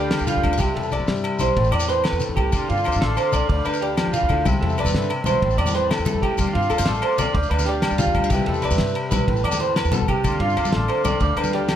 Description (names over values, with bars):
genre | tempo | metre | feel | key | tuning
highlife guitar band | 124 BPM (dotted quarters) | 12/8 | straight | C major | A4 = 440 Hz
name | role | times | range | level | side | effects
flamenco guitar | accompaniment | 0.0-11.8 s | A2 to D5 | -26 LUFS | left 5 dB | none
accordion | sustained chords | 0.0-11.8 s | C4 to C6 | -32 LUFS | left 1 dB | light tremolo tuning
electric guitar through a small old amp | arpeggios | 0.0-11.8 s | F4 to D5 | -23 LUFS | right 3 dB | tape echo
upright bass | bass | 0.0-11.7 s | A1 to G2 | -25 LUFS | equal | none
cloth-damped thuddy drum kit | drums | 0.1-11.8 s | kick drum, ride cymbal, snare drum | -27 LUFS | equal | none
agogo bells | percussion | 0.1-11.8 s | none | -30 LUFS | left 2 dB | none
shekere | percussion | 0.1-11.7 s | none | -31 LUFS | left 4 dB | none
congas | percussion | 4.5-11.6 s | none | -28 LUFS | left 3 dB | none
room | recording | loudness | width
moderate studio reverb, RT60 0.5 s | none | -18 LUFS | side -10 dB against mid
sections
0.0-11.8 A section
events
none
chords
0.0 G7/D; 0.6 Cmaj7; 1.6 Amadd9; 2.5 Dm7; 3.5 G7/D; 4.5 Cmaj7; 5.4 Amadd9; 6.4 Dm7; 7.4 G7/D; 8.3 Cmaj7; 9.3 Amadd9; 10.2 Dm7; 11.2 G7/D